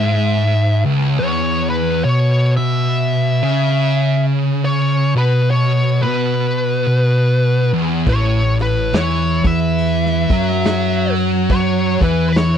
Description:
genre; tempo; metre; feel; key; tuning
stoner and doom metal; 70 BPM; 4/4; swing 60% on 8ths; unclear; A4 = 440 Hz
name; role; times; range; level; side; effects
fuzz lead guitar; melody; 0.0-12.6 s; B4 to E5; -20 LUFS; left 1 dB; wah, distortion, slapback echo
thick fuzz guitar; riff; 0.0-12.6 s; C#2 to F#3; -18 LUFS; left 7 dB; distortion
thick fuzz guitar; riff; 0.0-12.6 s; C#2 to F#3; -18 LUFS; right 7 dB; distortion
fingered electric bass; bass; 8.1-12.6 s; A1 to F#2; -21 LUFS; equal; overdrive
raw garage drum kit; drums; 8.1-12.6 s; hi-hat, kick drum, snare drum; -19 LUFS; equal; none
room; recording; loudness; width
little or no reverb; dry, close 1970s-style studio recording; -14 LUFS; side -8 dB against mid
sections
0.0-12.6 A section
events
none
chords
0.0 C#m; 1.2 E5; 8.1 A5

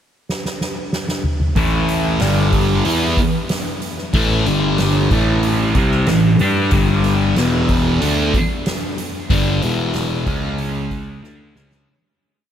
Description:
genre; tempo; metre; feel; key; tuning
psychedelic rock; 93 BPM; 4/4; straight; A mixolydian; A4 = 440 Hz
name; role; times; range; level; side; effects
soft-mallet drum kit; drums; 0.3-11.9 s; hi-hat, kick drum, snare drum, toms; -22 LUFS; equal; none
thick fuzz guitar; riff; 1.6-11.9 s; E2 to G4; -17 LUFS; equal; distortion, phaser
fuzz picked electric bass; bass; 1.6-11.9 s; E1 to G2; -20 LUFS; equal; overdrive
room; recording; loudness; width
moderate huge ambient reverb, RT60 7.2 s; dreamy mix soaked in reverb; -15 LUFS; side -9 dB against mid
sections
0.0-1.6 pickup bar; 1.6-11.9 riff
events
drum fill 0.3-1.6, 11.2-11.9; fade-out 9.3-11.9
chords
0.0 N.C.; 1.6 A5; 2.2 G5; 2.9 A5; 4.5 G5; 5.1 A5; 6.7 G5; 7.4 E5; 8.0 G5; 9.6 E5; 10.3 C#5; 11.2 Aadd11

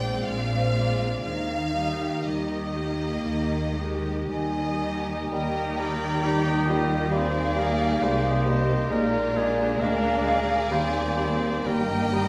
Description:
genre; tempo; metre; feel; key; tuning
classical, slow romantic movement for symphony orchestra; 53-69 BPM; 4/4; rubato; Eb major; A4 = 435 Hz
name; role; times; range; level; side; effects
rich studio violin section; melody; 0.0-12.3 s; F4 to G5; -36 LUFS; equal; none
warm studio violin section; second line; 0.0-12.3 s; F4 to G5; -37 LUFS; equal; none
warm studio viola section; accompaniment; 0.0-12.3 s; G3 to Bb4; -35 LUFS; equal; none
concert harp; arpeggios; 0.0-12.3 s; Bb2 to G5; -36 LUFS; equal; none
warm studio cello section; bass; 0.0-12.3 s; D2 to Eb3; -34 LUFS; equal; none
warm studio double bass section; bass; 0.0-12.3 s; G1 to Eb2; -33 LUFS; equal; none
mellow hollow silver concert flute; second line; 4.3-12.3 s; D5 to Bb5; -31 LUFS; equal; none
dark clarinet; second line; 5.3-12.3 s; Bb3; -39 LUFS; equal; none
warm oboe; second line; 5.3-12.3 s; G4 to Eb5; -35 LUFS; equal; none
mellow bassoon; accompaniment; 5.3-12.3 s; G3 to Ab3; -36 LUFS; equal; none
mellow French horn section; sustained chords; 5.3-12.3 s; G3 to Bb3; -34 LUFS; equal; none
room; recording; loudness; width
wet stone room reverb, RT60 1.2 s; none; -25 LUFS; mono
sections
0.0-5.3 A section; 5.3-12.3 A section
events
none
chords
0.0 Bb9; 1.2 Eb; 8.9 Bb7; 10.7 Eb

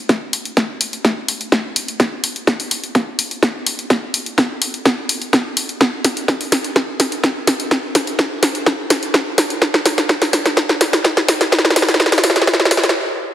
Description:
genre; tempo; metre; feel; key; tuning
melodic techno; 126 BPM; 4/4; straight; none; none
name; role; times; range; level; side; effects
electronic kick drum; drums; 0.1-12.6 s; none; -21 LUFS; equal; high-pass filter on kick, studio reverb, high-pass filter on room
punchy analog drum machine; drums; 0.1-13.0 s; hi-hat, snare drum; -15 LUFS; equal; overdrive, studio reverb
room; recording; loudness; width
moderate lush hall reverb, RT60 2.0 s, digital ambience; heavily compressed radio sound, multiband compression, high-pass filter; -15 LUFS; side -12 dB against mid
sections
0.0-13.3 A section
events
build-up 0.0-13.3; drum fill 0.0-13.0; stop 13.0-13.3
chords
none

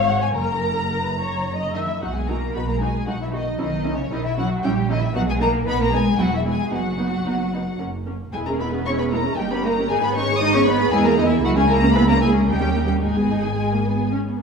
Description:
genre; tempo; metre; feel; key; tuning
quick classical-period movement for string orchestra; 107-118 BPM; 3/4; rubato; B major, G# minor from 8.3 s; A4 = 437 Hz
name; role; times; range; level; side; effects
warm studio violin section; melody; 0.0-14.1 s; C#5 to D#6; -26 LUFS; left 4 dB; none
warm studio violin section; second line; 0.0-14.1 s; C#4 to A#5; -26 LUFS; left 2 dB; none
warm studio viola section; accompaniment; 0.0-14.4 s; G#3 to E5; -25 LUFS; right 2 dB; none
dark studio double bass section; bass; 0.0-14.4 s; E1 to E2; -24 LUFS; right 1 dB; none
warm studio cello section; bass; 0.0-14.1 s; F#2 to D#4; -24 LUFS; right 2 dB; none
room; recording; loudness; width
wet recital hall reverb, RT60 1.4 s; small room ambience; -18 LUFS; side -5 dB against mid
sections
0.0-2.0 A section; 2.0-14.4 B section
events
none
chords
0.4 F#; 2.0 B; 3.6 C#m7/B; 4.6 A#dim7; 5.2 B; 6.2 E; 6.7 B/F#; 7.8 F#; 8.3 C#m/E; 9.4 D#7/G; 9.9 G#m; 10.9 E; 11.4 A#dim/C#; 12.5 D#7; 13.0 G#m

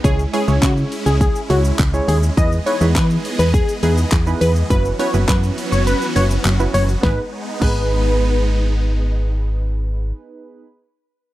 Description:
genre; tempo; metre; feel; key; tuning
dance-pop; 103 BPM; 4/4; straight; G# minor; A4 = 440 Hz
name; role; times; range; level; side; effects
plucky unison lead; melody; 0.0-8.7 s; F#4 to D#5; -22 LUFS; left 2 dB; none
warm analog keys; accompaniment; 0.0-10.7 s; G#3 to C#5; -25 LUFS; right 4 dB; chorus, sidechain pumping
supersaw chords; sustained chords; 0.0-10.1 s; E3 to G#4; -26 LUFS; right 1 dB; phaser, sidechain pumping
solid FM bass; bass; 0.0-10.1 s; F#1 to E3; -17 LUFS; equal; sidechain pumping
pop drum kit; drums; 0.0-7.8 s; crash cymbal, handclaps, hi-hat, kick drum, shaker, snare drum; -19 LUFS; equal; none
room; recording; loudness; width
little or no reverb; dry, close 1970s-style studio recording; -15 LUFS; side -15 dB against mid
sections
0.0-7.0 A section; 7.0-9.4 B section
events
drop 0.0-7.0; kick muted 5.9-7.0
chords
0.0 C#m; 2.4 Emaj7; 4.7 F#7sus4; 7.0 G#m

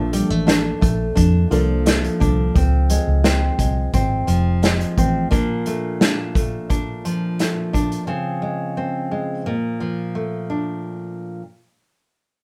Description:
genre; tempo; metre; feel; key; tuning
indie pop, bedroom pop; 87 BPM; 4/4; straight; Bb major; A4 = 439 Hz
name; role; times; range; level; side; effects
nylon-string guitar; accompaniment; 0.0-11.4 s; Bb2 to D4; -25 LUFS; equal; warbly pitch drift
warbly lo-fi synth keys; accompaniment; 0.0-2.6 s; F3 to A4; -27 LUFS; equal; chorus
vintage muted fingered electric bass; bass; 0.0-5.3 s; F1 to F2; -21 LUFS; equal; none
unplugged drum kit; drums; 0.1-8.1 s; hi-hat, kick drum, snare drum; -22 LUFS; equal; none
room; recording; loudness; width
light reverb; band playing live in one room; -20 LUFS; mono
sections
0.0-10.8 A section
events
none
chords
0.0 Bbmaj7; 2.5 Dbmaj7; 5.3 Bbmaj7; 8.1 Db5; 9.5 Bbmaj7

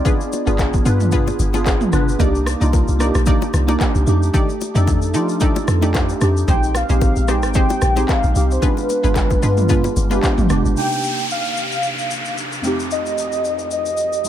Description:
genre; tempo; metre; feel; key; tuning
amapiano; 112 BPM; 4/4; swing 55% on 16ths; C minor; A4 = 439 Hz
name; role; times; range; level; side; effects
warm velvety synth lead; melody; 0.0-0.6, 6.5-14.3 s; B4 to G5; -23 LUFS; equal; chorus, tape echo
glassy digital keys; accompaniment; 0.0-14.3 s; F2 to B4; -21 LUFS; right 1 dB; chorus
analog pluck; stabs; 0.0-10.2 s; Eb4 to D5; -28 LUFS; left 2 dB; chorus, tape echo
deep house drum kit; drums; 0.1-14.3 s; handclaps, kick drum, rim click, shaker, toms; -20 LUFS; equal; vintage 12-bit sampler grit
congas and bongos; percussion; 0.1-10.4 s; none; -29 LUFS; left 7 dB; none
deep log drum bass; bass; 0.5-10.8 s; F1 to F3; -18 LUFS; equal; none
downlifter; sound effects; 10.8-14.3 s; none; -25 LUFS; equal; none
room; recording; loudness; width
little or no reverb; none; -15 LUFS; side -11 dB against mid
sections
0.0-10.8 A section; 10.8-14.3 B section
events
none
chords
0.1 G7b9; 2.2 Cm9; 4.1 F13; 6.5 Bb13sus4; 8.6 G7b9; 10.8 Cm9; 12.6 F9

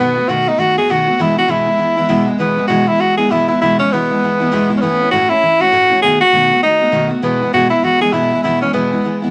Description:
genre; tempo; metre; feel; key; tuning
rock; 199 BPM; 4/4; swing 59% on 8ths; E major; A4 = 439 Hz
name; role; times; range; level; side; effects
clear tenor saxophone; melody; 0.0-9.2 s; B3 to G#4; -16 LUFS; equal; none
picked steel-string acoustic guitar; accompaniment; 0.0-9.3 s; E2 to F#4; -20 LUFS; equal; none
room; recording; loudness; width
moderate studio ambience, RT60 0.4 s; vinyl crackle; -14 LUFS; mono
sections
0.0-2.4 A section; 2.4-9.3 A section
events
none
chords
0.0 B7; 1.2 E; 4.8 A; 6.0 B7; 7.2 E

